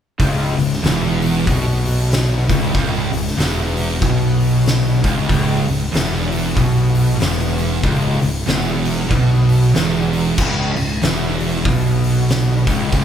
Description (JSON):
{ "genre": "stoner and doom metal", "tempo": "94 BPM", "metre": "4/4", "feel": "swing 60% on 8ths", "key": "C# minor", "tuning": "A4 = 440 Hz", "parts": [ { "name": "crunchy overdriven guitar", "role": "riff", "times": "0.2-13.0 s", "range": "C#2 to B2", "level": "-24 LUFS", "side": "equal", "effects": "none" }, { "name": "thick fuzz guitar", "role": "riff", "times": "0.2-13.0 s", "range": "C#2 to B2", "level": "-20 LUFS", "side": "left 5 dB", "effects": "distortion" }, { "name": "thick fuzz guitar", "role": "riff", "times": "0.2-13.0 s", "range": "C#2 to B2", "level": "-20 LUFS", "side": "right 7 dB", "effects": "distortion" }, { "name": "fuzz fingered electric bass", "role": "bass", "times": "0.2-13.0 s", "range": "C#1 to B1", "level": "-23 LUFS", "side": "equal", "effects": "overdrive" }, { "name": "oversized low-tuned drum kit", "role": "drums", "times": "0.2-13.0 s", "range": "crash cymbal, hi-hat, kick drum, snare drum", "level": "-20 LUFS", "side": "left 1 dB", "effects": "none" } ], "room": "light reverb", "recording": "band playing live in one room", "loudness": "-14 LUFS", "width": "side -9 dB against mid", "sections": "0.2-13.0 A section", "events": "none", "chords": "0.2 C#m" }